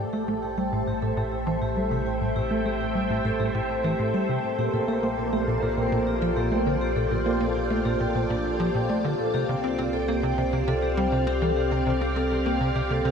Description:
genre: ambient, sequencer-driven space music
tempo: 101 BPM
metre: 4/4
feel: straight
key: unclear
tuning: A4 = 440 Hz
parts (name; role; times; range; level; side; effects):
- string machine, full ensemble; sustained chords; 0.0-13.1 s; A3 to G5; -27 LUFS; equal; ensemble chorus
- vibraphone with medium mallets; arpeggios; 0.0-13.1 s; D4 to G5; -30 LUFS; moving between left 7 dB and right 2 dB; auto-pan, tape echo
- tight sequencer bass; riff; 0.0-13.1 s; A2 to C4; -28 LUFS; equal; analog chorus, tape echo
- round analog bass; bass; 0.0-13.1 s; A1 to C2; -32 LUFS; equal; tube saturation
- wind-like tuned noise texture; texture; 0.3-13.1 s; C5; -36 LUFS; right 2 dB; built-in reverb
room: wet spring reverb, RT60 2.5 s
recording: echo-heavy mix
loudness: -23 LUFS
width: side -6 dB against mid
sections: 0.0-13.1 A section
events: fade-in on vibraphone 0.0-13.1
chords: 0.0 Am7; 4.4 Bbmaj7; 9.2 C7sus4

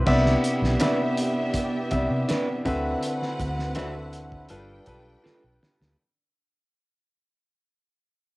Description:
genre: lush 1970s-style soul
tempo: 81 BPM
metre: 4/4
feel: straight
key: C major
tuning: A4 = 437 Hz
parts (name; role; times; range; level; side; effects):
- clear baby grand piano; accompaniment; 0.0-6.0 s; C3 to E5; -26 LUFS; left 1 dB; cassette tape
- tonewheel organ; sustained chords; 0.0-6.0 s; C3 to B4; -33 LUFS; equal; fast rotary speaker, cassette tape
- vintage muted fingered electric bass; bass; 0.0-5.9 s; G1 to C3; -27 LUFS; equal; none
- warm studio string section; second line; 0.1-6.0 s; B3 to G5; -32 LUFS; right 1 dB; cassette tape
- cloth-damped thuddy drum kit; drums; 0.1-6.0 s; crash cymbal, hi-hat, kick drum, snare drum; -31 LUFS; equal; none
- electric guitar through a small old amp; riff; 0.8-5.4 s; C4 to B4; -28 LUFS; right 1 dB; cassette tape
room: light reverb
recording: home recording on cassette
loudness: -22 LUFS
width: side -21 dB against mid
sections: 0.1-6.0 A section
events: fade-out 0.1-6.0; drum fill 5.2-6.0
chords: 0.1 Cmaj9; 2.7 D13; 4.5 G9

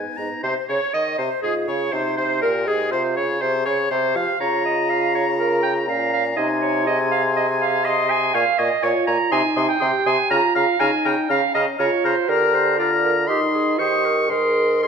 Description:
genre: quick classical-period movement for wind quintet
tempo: 121 BPM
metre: 4/4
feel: straight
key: Ab major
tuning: A4 = 440 Hz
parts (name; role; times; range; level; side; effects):
- bright oboe; second line; 0.0-14.9 s; Ab4 to Db6; -25 LUFS; left 4 dB; none
- bright clarinet; accompaniment; 0.0-14.9 s; D#4 to Bb5; -22 LUFS; right 5 dB; none
- mellow French horn; accompaniment; 0.0-14.9 s; B3 to Ab4; -26 LUFS; equal; none
- mellow bassoon; bass; 0.0-14.9 s; Ab2 to F3; -25 LUFS; right 2 dB; none
- mellow hollow concert flute; melody; 0.4-14.9 s; Ab4 to F6; -26 LUFS; left 9 dB; none
room: wet recital hall reverb, RT60 1.5 s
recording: minimal, uncompressed stereo recording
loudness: -17 LUFS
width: side -6 dB against mid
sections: 0.4-14.9 A section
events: none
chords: 0.4 Ab/C; 2.4 Fm; 4.4 Bbm/Db; 6.4 Ab/C; 8.3 Bbm7; 9.3 Abmaj7/C; 10.3 Bbm/Db; 12.3 Bb/D; 13.3 Ab/Eb; 13.8 Eb7; 14.3 Ab

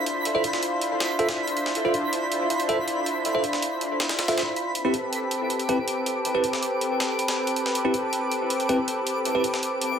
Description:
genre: drum and bass, jungle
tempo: 160 BPM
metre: 4/4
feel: straight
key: A minor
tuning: A4 = 440 Hz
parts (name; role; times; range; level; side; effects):
- lush unison pad; sustained chords; 0.0-10.0 s; C4 to C5; -26 LUFS; equal; chorus
- twinkling granular texture; texture; 0.0-10.0 s; B5 to D6; -32 LUFS; right 1 dB; built-in reverb
- breakbeat sampler-style drum kit; drums; 0.1-9.9 s; hi-hat, snare drum; -29 LUFS; right 1 dB; high-pass filter on hats, high-pass filter on snare
- bell-like tine electric piano; stabs; 0.3-9.4 s; C4 to E5; -28 LUFS; right 1 dB; phaser, dub echo
room: moderate plate reverb, RT60 1.9 s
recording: none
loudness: -22 LUFS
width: side -7 dB against mid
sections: 0.0-10.0 A section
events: none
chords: 0.0 Dm9; 4.8 Am9

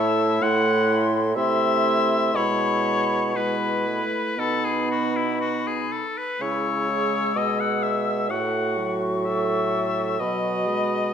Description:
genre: classical, slow romantic movement for wind quintet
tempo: 58-66 BPM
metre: 4/4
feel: rubato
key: E major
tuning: A4 = 441 Hz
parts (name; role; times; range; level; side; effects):
- hollow concert flute; melody; 0.0-11.1 s; A5 to E6; -29 LUFS; left 7 dB; none
- bright oboe; second line; 0.0-11.1 s; E4 to F#5; -26 LUFS; left 4 dB; none
- clear clarinet; accompaniment; 0.0-11.1 s; D#4 to A4; -30 LUFS; right 7 dB; none
- mellow French horn; accompaniment; 0.0-11.1 s; F#3 to B3; -29 LUFS; right 1 dB; none
- clear bassoon; bass; 0.0-11.1 s; A2 to C#3; -26 LUFS; right 2 dB; none
room: moderate recital hall reverb, RT60 1.5 s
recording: none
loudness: -21 LUFS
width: side -8 dB against mid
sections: 0.0-11.1 A section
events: none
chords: 0.4 Am; 2.4 E/B; 4.4 B; 6.4 C#m7; 8.3 F#m/A; 10.2 B

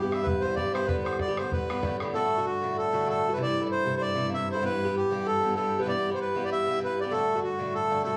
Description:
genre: celtic folk, Celtic reel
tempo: 193 BPM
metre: 4/4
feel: swing 55% on 8ths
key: unclear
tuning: A4 = 440 Hz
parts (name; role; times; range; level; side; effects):
- accordion; melody; 0.0-8.2 s; F#4 to E5; -30 LUFS; equal; plate reverb
- Irish bouzouki; accompaniment; 0.0-8.2 s; G2 to G4; -32 LUFS; equal; none
- dark cello; drone; 0.0-8.2 s; G2; -39 LUFS; equal; none
- bodhran; percussion; 0.1-2.1 s; none; -36 LUFS; equal; none
room: wet studio reverb, RT60 0.5 s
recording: heard from further back in the room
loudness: -28 LUFS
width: mono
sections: 0.0-2.1 A section; 2.1-8.2 B section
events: none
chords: 0.0 Em; 0.9 Gadd9; 2.1 D; 3.4 Am; 4.6 Em; 7.1 D

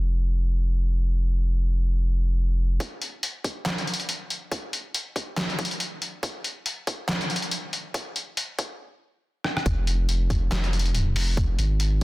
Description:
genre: deep dubstep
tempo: 140 BPM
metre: 4/4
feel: swing 57% on 16ths, half-time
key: F minor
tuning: A4 = 440 Hz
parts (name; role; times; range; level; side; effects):
- soft dub sub bass; bass; 0.0-2.8, 9.7-12.0 s; F1 to Ab1; -22 LUFS; equal; none
- electronic kick drum; drums; 2.8-12.0 s; none; -30 LUFS; equal; high-pass filter on kick, high-pass filter on room
- trip hop sampler-style drum kit; drums; 2.8-12.0 s; handclaps, hi-hat, rim click, snare drum; -28 LUFS; equal; low-pass filter on hats, low-pass filter on snare, low-pass filter on room
room: little or no reverb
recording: dense, heavily limited modern master, low-pass filter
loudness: -24 LUFS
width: side -20 dB against mid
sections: 0.0-2.8 A section; 2.8-9.7 B section; 9.7-12.0 C section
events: filter sweep 0.0-2.8; build-up 2.8-9.7; drum fill 9.4; drop 9.7-12.0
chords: none

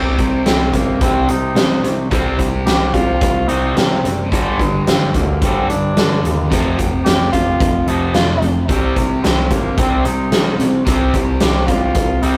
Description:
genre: classic rock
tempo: 110 BPM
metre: 4/4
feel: straight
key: C minor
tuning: A4 = 439 Hz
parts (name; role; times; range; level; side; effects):
- overdriven electric guitar; riff; 0.0-12.4 s; F2 to C4; -24 LUFS; equal; none
- overdriven electric guitar; riff; 0.0-12.4 s; F2 to C4; -24 LUFS; equal; none
- growling picked electric bass; bass; 0.0-12.4 s; F1 to C3; -23 LUFS; equal; overdrive
- huge arena drum kit; drums; 0.2-12.3 s; hi-hat, kick drum, snare drum; -20 LUFS; equal; none
- warm tenor saxophone; melody; 0.5-12.4 s; Bb3 to G4; -24 LUFS; equal; digital delay
room: light reverb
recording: rough rehearsal-room recording, tube saturation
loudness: -16 LUFS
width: mono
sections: 0.0-12.4 A section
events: none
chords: 0.0 C5; 4.3 G5; 6.5 F5; 8.7 C5

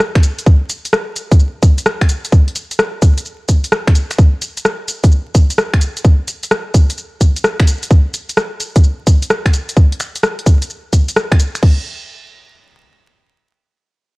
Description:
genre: UK garage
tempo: 129 BPM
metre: 4/4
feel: swing 66% on 16ths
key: none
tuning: none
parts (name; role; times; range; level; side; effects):
- garage drum kit; drums; 0.0-11.6 s; finger snaps, hi-hat, rim click, shaker; -17 LUFS; equal; studio reverb
- garage drum kit; drums; 0.2-11.8 s; crash cymbal, kick drum; -9 LUFS; equal; studio reverb
room: digital ambience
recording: dry, gritty hardware recording, vinyl crackle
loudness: -12 LUFS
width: side -24 dB against mid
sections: 0.0-11.6 A section; 11.6-13.5 B section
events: drop 0.0-11.6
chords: none

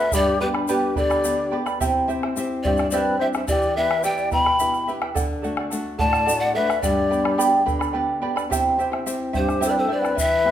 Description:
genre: andean folk, Andean ensemble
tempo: 72 BPM (dotted quarters)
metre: 6/8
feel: straight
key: unclear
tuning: A4 = 440 Hz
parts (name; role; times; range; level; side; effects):
- breathy pan flute; melody; 0.0-10.5 s; B4 to B5; -22 LUFS; left 1 dB; none
- mellow large quena; second line; 0.0-10.5 s; G4 to G5; -26 LUFS; left 3 dB; none
- charango; accompaniment; 0.0-10.5 s; E4 to B5; -25 LUFS; right 5 dB; none
- flamenco guitar; accompaniment; 0.0-10.5 s; G2 to G4; -27 LUFS; left 2 dB; none
- egg shaker; percussion; 0.0-10.3 s; none; -34 LUFS; left 6 dB; none
- bombo; percussion; 0.1-10.5 s; none; -29 LUFS; equal; none
room: wet recital hall reverb, RT60 1.3 s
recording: minimal, uncompressed stereo recording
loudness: -19 LUFS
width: side -10 dB against mid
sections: 0.0-10.5 A section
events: none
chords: 0.1 G; 1.8 C; 3.5 Em; 5.2 D; 6.8 G; 8.5 C

